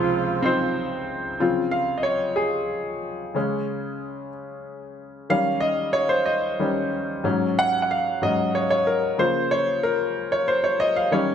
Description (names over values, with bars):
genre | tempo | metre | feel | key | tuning
gospel | 62 BPM (dotted quarters) | 6/8 | straight | Db major | A4 = 440 Hz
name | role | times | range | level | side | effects
mellow horn section | melody | 0.0-1.1 s | F3 to F4 | -24 LUFS | right 4 dB | none
clear grand piano | accompaniment | 0.0-11.3 s | Db2 to Gb5 | -21 LUFS | left 1 dB | none
room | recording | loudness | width
moderate recital hall reverb, RT60 1.4 s | none | -21 LUFS | side -8 dB against mid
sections
0.0-1.4 A section; 1.4-11.3 B section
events
grand piano solo 1.4-11.3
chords
0.0 Dbmaj9; 1.4 Dbmaj7; 3.4 Db5; 5.3 Eb7; 7.2 Ab7sus4; 9.2 Db6